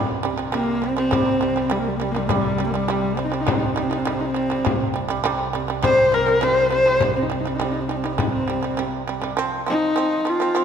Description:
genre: mongolian traditional, Mongolian folk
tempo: 102 BPM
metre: 4/4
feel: straight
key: C yu mode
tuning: A4 = 441 Hz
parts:
  - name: shamisen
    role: arpeggios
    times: 0.0-10.6 s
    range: C3 to C4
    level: -25 LUFS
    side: right 6 dB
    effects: none
  - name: muted double bass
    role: drone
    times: 0.0-9.4 s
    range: C2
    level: -30 LUFS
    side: right 2 dB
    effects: none
  - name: frame drum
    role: percussion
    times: 0.4-9.4 s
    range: none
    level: -27 LUFS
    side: left 4 dB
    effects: none
  - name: warm horsehead fiddle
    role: melody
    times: 0.5-10.6 s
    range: G3 to C5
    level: -20 LUFS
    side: left 2 dB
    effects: none
room: wet scoring stage reverb, RT60 2.0 s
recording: none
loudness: -19 LUFS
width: side -7 dB against mid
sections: 0.0-9.4 A section; 9.4-10.6 B section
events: none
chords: 0.0 C5; 9.4 F5

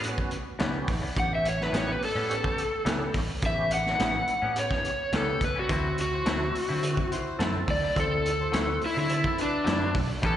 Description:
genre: straight-eighth soul blues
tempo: 106 BPM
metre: 4/4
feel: straight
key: unclear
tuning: A4 = 440 Hz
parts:
  - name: tonewheel organ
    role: accompaniment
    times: 0.0-10.4 s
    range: B3 to A4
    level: -36 LUFS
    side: right 5 dB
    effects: overdrive, chorus vibrato, slow rotary speaker, slapback echo
  - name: direct-recorded clean electric guitar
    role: stabs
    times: 0.0-10.4 s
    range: A2 to E4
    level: -36 LUFS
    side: left 5 dB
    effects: lush chorus, slapback echo, digital delay
  - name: vintage muted fingered electric bass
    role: bass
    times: 0.0-10.4 s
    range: A1 to D3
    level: -32 LUFS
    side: equal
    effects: none
  - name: crunchy breakbeat drum kit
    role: drums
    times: 0.0-10.4 s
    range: hi-hat, kick drum, snare drum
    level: -30 LUFS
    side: equal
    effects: none
  - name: overdriven slide guitar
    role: melody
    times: 1.2-10.4 s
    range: D4 to F#5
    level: -28 LUFS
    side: left 1 dB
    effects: slapback echo
  - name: warm horn section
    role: sustained chords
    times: 5.7-10.4 s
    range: E4 to C#5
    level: -37 LUFS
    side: left 2 dB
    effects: none
room: light reverb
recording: live gig heard through the venue's PA, recital hall reverb, nothing above 10.9 kHz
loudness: -25 LUFS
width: side -11 dB against mid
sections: 0.0-10.4 A section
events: electric slide guitar solo 0.0-10.4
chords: 0.0 A9; 5.7 D9

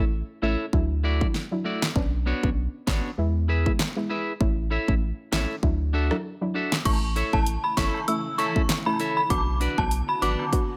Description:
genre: dancehall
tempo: 98 BPM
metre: 4/4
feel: swing 56% on 16ths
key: unclear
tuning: A4 = 439 Hz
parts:
  - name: soft round pluck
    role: accompaniment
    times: 0.0-10.8 s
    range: F#3 to F#4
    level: -34 LUFS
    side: equal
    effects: chorus
  - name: clean electric guitar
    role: arpeggios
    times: 0.0-10.4 s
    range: A3 to E5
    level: -32 LUFS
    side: equal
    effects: none
  - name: warm sub bass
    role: bass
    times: 0.0-10.4 s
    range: F#1 to E2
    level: -28 LUFS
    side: equal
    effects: none
  - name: pop drum kit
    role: drums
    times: 0.7-10.7 s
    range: crash cymbal, handclaps, hi-hat, kick drum, rim click, snare drum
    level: -28 LUFS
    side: equal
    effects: none
  - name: synth chime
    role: melody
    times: 6.9-10.3 s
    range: A5 to E6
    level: -29 LUFS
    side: equal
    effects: ensemble chorus, delay
  - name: granular cloud pad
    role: sustained chords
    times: 7.6-10.8 s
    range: C#3 to F#4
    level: -40 LUFS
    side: equal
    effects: built-in reverb, sidechain pumping
  - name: woodblock and cabasa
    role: percussion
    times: 6.9-10.5 s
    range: none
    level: -40 LUFS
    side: equal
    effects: none
room: little or no reverb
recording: none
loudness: -25 LUFS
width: mono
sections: 0.0-6.9 A section; 6.9-10.8 B section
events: none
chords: 0.0 A; 0.7 Dadd9; 2.0 Bmadd9; 3.2 E; 4.4 A; 5.6 Dadd9; 6.9 A; 9.3 Bm

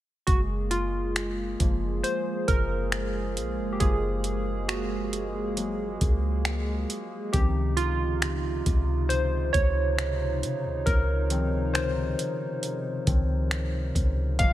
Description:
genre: contemporary R&B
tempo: 68 BPM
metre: 4/4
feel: straight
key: Gb lydian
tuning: A4 = 440 Hz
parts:
  - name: warm analog keys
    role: accompaniment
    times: 0.3-14.5 s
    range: Eb3 to F5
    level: -29 LUFS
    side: right 1 dB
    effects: chorus
  - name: hollow soft pad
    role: sustained chords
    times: 0.3-14.5 s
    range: C3 to Ab4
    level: -34 LUFS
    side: equal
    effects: chorus
  - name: soft 808-style bass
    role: bass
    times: 0.3-14.5 s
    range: Gb1 to Db3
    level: -28 LUFS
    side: equal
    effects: none
  - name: smooth R&B drum kit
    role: drums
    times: 0.3-14.5 s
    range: finger snaps, hi-hat, kick drum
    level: -27 LUFS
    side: equal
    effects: none
room: digital ambience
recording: none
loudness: -24 LUFS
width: side -13 dB against mid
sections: 0.3-14.5 A section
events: synth keys solo 0.3-14.5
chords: 0.3 Gbmaj9; 7.3 Dbmaj9

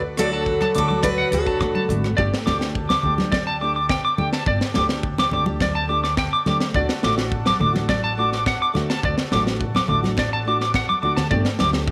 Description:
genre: highlife guitar band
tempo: 105 BPM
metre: 4/4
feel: straight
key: G major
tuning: A4 = 444 Hz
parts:
  - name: raspy tenor saxophone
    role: second line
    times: 0.0-1.9 s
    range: F#3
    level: -33 LUFS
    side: equal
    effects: none
  - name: accordion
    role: sustained chords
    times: 0.0-11.9 s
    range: D4 to B4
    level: -38 LUFS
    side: equal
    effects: none
  - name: upright bass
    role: bass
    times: 0.0-11.9 s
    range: G1 to D2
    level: -29 LUFS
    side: equal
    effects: none
  - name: picked steel-string acoustic guitar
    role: melody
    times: 0.2-1.9 s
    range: F#4 to B4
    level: -24 LUFS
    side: equal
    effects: none
  - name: nylon-string guitar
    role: accompaniment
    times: 0.2-11.9 s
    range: A3 to G4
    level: -31 LUFS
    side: equal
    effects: none
  - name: electric guitar at the edge of break-up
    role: arpeggios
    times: 0.2-11.7 s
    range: D5 to D6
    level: -25 LUFS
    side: equal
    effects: tremolo, slapback echo
  - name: tight funk drum kit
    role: drums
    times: 0.2-11.9 s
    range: hi-hat, kick drum, rim click, snare drum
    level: -28 LUFS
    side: equal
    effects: none
  - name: congas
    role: percussion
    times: 0.2-11.7 s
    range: none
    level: -29 LUFS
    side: equal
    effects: none
room: light reverb, small room ambience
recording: none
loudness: -21 LUFS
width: mono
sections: 0.0-2.2 A section; 2.2-11.9 B section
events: drum fill 10.9-11.3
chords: 0.0 D; 2.2 Gsus2; 6.8 D; 11.3 Gsus2

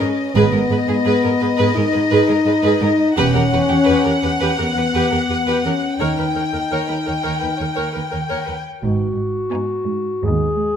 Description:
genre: cinematic, suspense film score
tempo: 85 BPM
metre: 4/4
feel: straight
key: unclear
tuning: A4 = 440 Hz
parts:
  - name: warm chamber violin section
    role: melody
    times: 0.0-10.0 s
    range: D#5 to G#5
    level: -23 LUFS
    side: left 4 dB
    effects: none
  - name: warm chamber violin section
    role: second line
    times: 0.0-10.1 s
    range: D#4 to C#5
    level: -25 LUFS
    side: left 1 dB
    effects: none
  - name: dark chamber viola section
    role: accompaniment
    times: 0.0-10.0 s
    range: B3 to A#4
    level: -24 LUFS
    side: right 4 dB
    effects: none
  - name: dark French horn section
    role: sustained chords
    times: 0.0-10.5 s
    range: B3 to D#4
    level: -19 LUFS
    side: left 3 dB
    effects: none
  - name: warm studio cello section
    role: bass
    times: 0.0-10.8 s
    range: D#2 to G#2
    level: -23 LUFS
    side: right 3 dB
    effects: none
  - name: warm chamber double bass section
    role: bass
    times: 0.3-10.8 s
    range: E1 to D#2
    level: -23 LUFS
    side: right 5 dB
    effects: none
  - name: dark clarinet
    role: second line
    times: 8.8-10.8 s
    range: F#4 to G#4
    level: -21 LUFS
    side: left 2 dB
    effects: none
  - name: dark chamber cello section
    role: riff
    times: 8.8-10.8 s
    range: G#2 to G#3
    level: -24 LUFS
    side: right 3 dB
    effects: none
room: moderate scoring stage reverb, RT60 1.8 s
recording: close, detailed microphones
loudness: -16 LUFS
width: side -8 dB against mid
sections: 0.0-8.8 A section; 8.8-10.8 B section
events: none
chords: 0.0 G#m; 3.2 Emadd9; 6.0 D#7; 8.8 G#m7

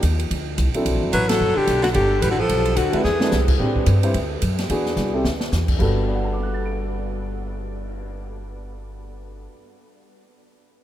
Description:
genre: jazz, small-group swing and bop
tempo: 218 BPM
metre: 4/4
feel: swing 60% on 8ths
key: G major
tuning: A4 = 440 Hz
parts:
  - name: upright bass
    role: bass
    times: 0.0-9.5 s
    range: F#1 to A2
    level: -23 LUFS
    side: equal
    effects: none
  - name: open jazz drum kit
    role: drums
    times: 0.0-7.9 s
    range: crash cymbal, cymbal swell, hi-hat, kick drum, ride cymbal, snare drum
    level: -26 LUFS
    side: equal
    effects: none
  - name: warm concert grand piano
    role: accompaniment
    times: 0.7-9.7 s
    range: G2 to D7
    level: -26 LUFS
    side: equal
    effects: none
  - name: breathy alto saxophone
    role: melody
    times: 1.1-3.5 s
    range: F#4 to B4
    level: -24 LUFS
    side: left 2 dB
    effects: none
  - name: edgy baritone saxophone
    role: second line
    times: 1.1-3.4 s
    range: D3 to G3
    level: -28 LUFS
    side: right 3 dB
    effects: none
room: moderate huge ambient reverb, RT60 7.9 s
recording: in a vast, echoing space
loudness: -18 LUFS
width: side -12 dB against mid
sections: 0.0-3.6 A section; 3.6-5.8 B section; 5.8-8.0 C section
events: band accent 1.3; drum fill 3.0, 5.0-5.5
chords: 0.3 D9; 1.4 Gadd9; 2.5 Bm7b5; 3.0 E7b13; 3.6 Am11; 4.1 D; 4.7 E9; 5.2 Dsus2; 5.8 Gmaj9

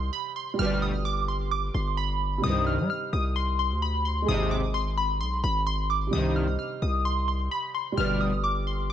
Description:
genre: hip hop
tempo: 130 BPM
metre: 4/4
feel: half-time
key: C harmonic minor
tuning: A4 = 440 Hz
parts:
  - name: glassy digital keys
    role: melody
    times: 0.0-8.9 s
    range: B5 to F6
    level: -29 LUFS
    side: equal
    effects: chorus, phaser, low-pass filter, digital delay
  - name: dark baby grand piano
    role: accompaniment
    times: 0.0-8.9 s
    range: C3 to Eb5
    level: -34 LUFS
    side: right 4 dB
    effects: low-pass filter
  - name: hard-hitting 808-style bass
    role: bass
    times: 0.0-8.9 s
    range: G1 to G3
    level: -28 LUFS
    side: equal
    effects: none
  - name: analog synth brass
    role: stabs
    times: 0.6-8.3 s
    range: Ab1 to G3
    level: -31 LUFS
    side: left 1 dB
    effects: chorus
room: little or no reverb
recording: none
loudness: -24 LUFS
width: side -10 dB against mid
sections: 0.0-8.9 A section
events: none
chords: 0.0 Cm; 0.6 G; 2.4 Cm; 4.3 Ab; 6.1 Cm; 8.0 G

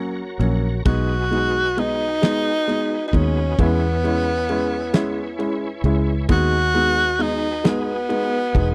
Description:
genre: six-eight pop ballad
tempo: 44 BPM (dotted quarters)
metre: 6/8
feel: straight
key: B major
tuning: A4 = 440 Hz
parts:
  - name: dark upright piano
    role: accompaniment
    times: 0.0-8.7 s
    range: F#3 to E4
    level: -26 LUFS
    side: equal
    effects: none
  - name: tonewheel organ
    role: sustained chords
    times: 0.0-8.7 s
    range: E4 to A#5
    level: -34 LUFS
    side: equal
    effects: chorus vibrato, fast rotary speaker
  - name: fingered electric bass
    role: bass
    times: 0.0-8.7 s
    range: E1 to E2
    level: -24 LUFS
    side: equal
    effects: none
  - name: damped 70s drum kit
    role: drums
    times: 0.4-8.7 s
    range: kick drum, ride cymbal, snare drum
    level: -21 LUFS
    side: equal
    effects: none
  - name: breathy tenor saxophone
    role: melody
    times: 0.9-8.7 s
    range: B3 to F#4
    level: -24 LUFS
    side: equal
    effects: none
room: little or no reverb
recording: dry, close 1970s-style studio recording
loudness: -20 LUFS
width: mono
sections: 0.0-8.7 A section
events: none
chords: 0.0 F#; 0.9 B6; 3.6 E6; 6.3 B6/D#

